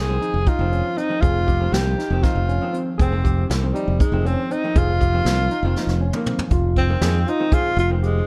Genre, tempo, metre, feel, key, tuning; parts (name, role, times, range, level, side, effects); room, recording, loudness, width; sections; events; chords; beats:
progressive instrumental, band music in an uneven meter; 238 BPM (eighths); 7/8; straight; F minor; A4 = 440 Hz
breathy tenor saxophone; melody; 0.0-8.3 s; G3 to Ab4; -26 LUFS; equal; plate reverb, delay
barky tine electric piano; arpeggios; 0.0-8.2 s; C4 to Ab4; -32 LUFS; equal; overdrive, delay
modern bright fingered electric bass; bass; 0.0-8.2 s; F1 to F2; -23 LUFS; equal
vintage hollow-body jazz guitar; accompaniment; 0.1-8.3 s; F2 to C4; -32 LUFS; equal
jazz brush drum kit; drums; 0.2-8.1 s; hi-hat, kick drum, snare drum, toms; -24 LUFS; equal
light reverb; dark, warm production; -20 LUFS; mono
0.0-6.5 A section; 6.5-8.3 B section
drum fill 5.8-6.5; tenor saxophone solo 6.5-8.3
0.0 Fmadd9; 6.5 Fm
0.21 0.47 0.72 0.97 | 1.22 1.48 1.73 1.98 2.23 2.49 2.74 | 2.99 3.24 3.50 3.75 4.00 4.25 4.51 | 4.76 5.01 5.26 5.51 5.77 6.02 6.27 | 6.52 6.77 7.03 7.28 7.53 7.78 8.03